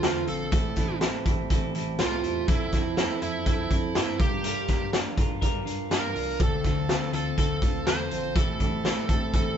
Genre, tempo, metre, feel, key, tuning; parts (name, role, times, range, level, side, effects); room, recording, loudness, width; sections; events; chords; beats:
jangly indie pop; 122 BPM; 4/4; straight; D minor; A4 = 438 Hz
bluesy overdriven lead guitar; melody; 0.0-9.6 s; E4 to C5; -31 LUFS; right 4 dB; distortion
electric guitar through a small old amp; accompaniment; 0.0-9.6 s; A2 to Bb4; -35 LUFS; right 6 dB
twelve-string electric guitar; arpeggios; 0.0-9.6 s; A2 to Bb4; -32 LUFS; left 4 dB
tine electric piano; bass; 0.0-9.5 s; A1 to G2; -35 LUFS; equal; overdrive, fast stereo tremolo
raw garage drum kit; drums; 0.0-9.4 s; hi-hat, kick drum, snare drum; -26 LUFS; equal
light reverb; band playing live in one room, nothing above 7.9 kHz; -24 LUFS; side -8 dB against mid
0.0-9.6 A section
0.0 Dm7; 0.5 Am7; 2.5 Fmaj7; 4.2 Gm7; 6.4 Dm7; 8.4 Am7
0.03 | 0.52 1.01 1.50 1.99 | 2.48 2.97 3.46 3.95 | 4.44 4.93 5.42 5.91 | 6.40 6.89 7.38 7.87 | 8.36 8.85 9.34